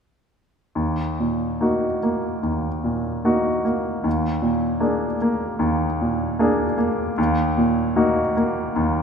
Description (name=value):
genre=classical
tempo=68-78 BPM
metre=4/4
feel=rubato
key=Eb minor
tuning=A4 = 441 Hz
part: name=clear grand piano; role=melody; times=0.8-9.0 s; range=Eb2 to Ab4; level=-19 LUFS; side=equal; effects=none
room=wet scoring stage reverb, RT60 2.0 s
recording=none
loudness=-19 LUFS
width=side -6 dB against mid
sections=0.7-9.0 A section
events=none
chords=0.7 Ebm; 4.1 Bb7/Eb; 7.2 Ebm